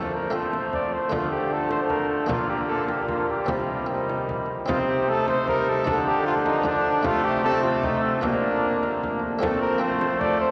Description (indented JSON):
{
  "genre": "classical, renaissance-style consort dance",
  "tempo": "152 BPM",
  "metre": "3/4",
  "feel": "straight",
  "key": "C dorian",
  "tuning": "A4 = 441 Hz",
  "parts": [
    { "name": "warm cornet", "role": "melody", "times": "0.0-10.5 s", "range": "C4 to D5", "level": "-29 LUFS", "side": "equal", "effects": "none" },
    { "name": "mellow cor anglais", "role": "second line", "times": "0.0-10.5 s", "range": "G3 to Eb4", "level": "-32 LUFS", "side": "equal", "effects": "none" },
    { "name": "buff-stop harpsichord", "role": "accompaniment", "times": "0.0-10.5 s", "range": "F2 to F4", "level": "-36 LUFS", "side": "equal", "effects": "none" },
    { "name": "rich viola", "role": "accompaniment", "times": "0.0-10.5 s", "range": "D3 to C4", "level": "-32 LUFS", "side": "equal", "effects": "none" },
    { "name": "clear trombone", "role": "bass", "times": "0.0-10.5 s", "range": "F2 to F3", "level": "-30 LUFS", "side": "equal", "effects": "none" },
    { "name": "frame drum", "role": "percussion", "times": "0.5-10.4 s", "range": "none", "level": "-36 LUFS", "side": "equal", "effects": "none" }
  ],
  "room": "wet cathedral reverb, RT60 6.4 s",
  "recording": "none",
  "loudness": "-24 LUFS",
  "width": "mono",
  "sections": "0.0-4.7 A section; 4.7-10.5 A section",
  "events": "none",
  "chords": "0.0 F; 1.1 Dm; 2.3 Bb; 3.5 Cm; 5.9 Dm; 7.1 F/C; 8.2 Bb; 9.4 F",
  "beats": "0.34 0.73 | 1.13 1.52 1.91 | 2.30 2.69 3.09 | 3.49 3.89 4.29 | 4.69 5.09 5.48 | 5.88 6.27 6.66 | 7.05 7.44 7.84 | 8.23 8.63 9.03 | 9.42 9.82 10.21"
}